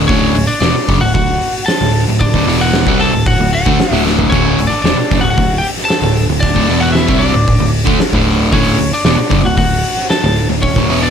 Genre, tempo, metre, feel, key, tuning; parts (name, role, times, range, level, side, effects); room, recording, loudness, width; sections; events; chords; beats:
quiet-loud alternative rock; 114 BPM; 4/4; straight; D major; A4 = 440 Hz
overdriven semi-hollow guitar; riff; 0.0-11.1 s; D2 to C4; -14 LUFS; equal
overdriven picked electric bass; bass; 0.0-11.1 s; D1 to D2; -18 LUFS; equal
lightly driven lead guitar; melody; 0.1-11.1 s; C#4 to A5; -17 LUFS; left 1 dB
oversized low-tuned drum kit; drums; 0.1-11.0 s; crash cymbal, hi-hat, kick drum, snare drum, toms; -16 LUFS; equal
light reverb; -10 LUFS; side -8 dB against mid
0.0-11.1 A section
drum fill 4.1
0.0 D
| 0.10 0.63 1.16 1.68 | 2.21 2.74 3.27 3.79 | 4.32 4.85 5.38 5.90 | 6.43 6.95 7.48 8.01 | 8.53 9.05 9.58 10.11 | 10.63